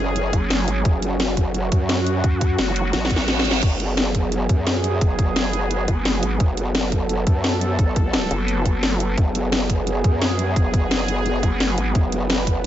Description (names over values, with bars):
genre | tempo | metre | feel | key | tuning
dark technical drum and bass | 173 BPM | 4/4 | straight | F# minor | A4 = 440 Hz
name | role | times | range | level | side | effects
sweeping resonant pad | sustained chords | 0.0-12.7 s | F#3 to B4 | -25 LUFS | right 1 dB | chorus, sidechain pumping
growl bass | bass | 0.0-12.7 s | F#1 to F#2 | -24 LUFS | equal | chorus, overdrive, sidechain pumping
drum and bass drum kit | drums | 0.2-12.7 s | crash cymbal, hi-hat, snare drum | -23 LUFS | left 1 dB | overdrive
vowel-sweep wobble bass | bass | 0.3-2.9, 5.9-9.2, 11.4-11.9 s | F#1 to F#2 | -22 LUFS | equal | chorus
electronic kick drum | drums | 0.3-12.5 s | none | -19 LUFS | equal | overdrive
reverse cymbal | sound effects | 3.1-3.6 s | none | -27 LUFS | right 5 dB | none
room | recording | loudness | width
digital ambience | nothing above 7.8 kHz | -18 LUFS | side -12 dB against mid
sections
0.0-12.7 A section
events
drum fill 2.9-3.6; reverse cymbal 3.1-3.6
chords
0.0 F#madd9